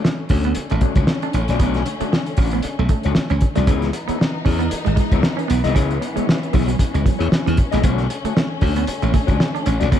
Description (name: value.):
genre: funk.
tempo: 115 BPM.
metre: 4/4.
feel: swing 56% on 16ths.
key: unclear.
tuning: A4 = 440 Hz.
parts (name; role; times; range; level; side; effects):
mellow electric guitar; accompaniment; 0.0-10.0 s; A3 to D#5; -26 LUFS; left 12 dB; none.
warm studio string section; sustained chords; 0.0-10.0 s; D3 to D#4; -28 LUFS; left 3 dB; none.
electric guitar at the edge of break-up; riff; 0.0-10.0 s; E3 to D4; -25 LUFS; right 7 dB; none.
cloth-damped thuddy drum kit; drums; 0.0-10.0 s; hi-hat, kick drum, snare drum; -19 LUFS; equal; none.
glassy slap bass; bass; 0.3-10.0 s; G#1 to E2; -20 LUFS; equal; none.
room: light reverb.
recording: dark, warm production.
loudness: -16 LUFS.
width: side -10 dB against mid.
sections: 0.0-10.0 A section.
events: none.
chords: 0.0 Bm9; 3.7 C#m7; 7.8 Bm9.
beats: 0.04 0.56 1.08 | 1.60 2.12 2.64 3.16 | 3.68 4.20 4.72 5.24 | 5.76 6.28 6.80 7.32 | 7.84 8.36 8.88 9.40 | 9.92.